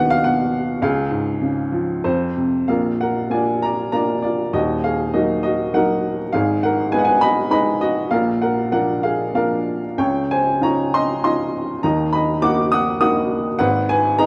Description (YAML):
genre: classical, lyrical solo piano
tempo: 92-104 BPM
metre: 3/4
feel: rubato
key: Eb minor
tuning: A4 = 440 Hz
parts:
  - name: warm upright piano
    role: solo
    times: 0.0-14.3 s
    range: Eb1 to Eb6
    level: -19 LUFS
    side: equal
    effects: none
room: moderate scoring stage reverb, RT60 1.8 s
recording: dark, warm production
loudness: -19 LUFS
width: mono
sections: 0.0-2.7 A section; 2.7-14.3 B section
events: upright piano fill 1.7-2.7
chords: 0.0 B/D#; 0.8 C#; 2.0 F5; 2.7 Bb; 4.5 Ebm; 6.3 Abm; 8.1 Bb; 10.0 Dbadd9; 11.8 Ebm; 13.6 Abm